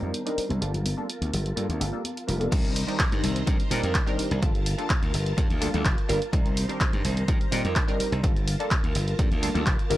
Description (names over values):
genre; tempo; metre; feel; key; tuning
filtered disco house; 126 BPM; 4/4; straight; G minor; A4 = 440 Hz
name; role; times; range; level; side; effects
funky polysynth comp; accompaniment; 0.0-10.0 s; G3 to Bb4; -30 LUFS; equal; chorus, phaser, sidechain pumping, low-pass filter
string machine, full ensemble; sustained chords; 0.0-10.0 s; Eb3 to Bb5; -36 LUFS; equal; phaser, ensemble chorus, sidechain pumping, low-pass filter
glassy slap bass; bass; 0.0-10.0 s; F1 to Bb2; -28 LUFS; equal; tube saturation, sidechain pumping, low-pass filter
tambourine and congas; percussion; 0.0-2.5 s; none; -36 LUFS; left 2 dB; sidechain pumping on perc, low-pass filter on perc
punchy analog drum machine; drums; 0.1-10.0 s; crash cymbal, handclaps, hi-hat; -31 LUFS; equal; sidechain pumping on hats, sidechain pumping on cymbals
electronic kick drum; drums; 2.5-9.8 s; none; -25 LUFS; equal; none
room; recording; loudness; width
little or no reverb; dry, gritty hardware recording, transformer saturation; -23 LUFS; side -15 dB against mid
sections
0.0-2.5 A section; 2.5-10.0 B section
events
drop 2.5-10.0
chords
0.0 Cm7; 0.6 Gm9; 2.5 Cm7; 4.4 Gm9; 6.3 Cm7; 8.2 Gm9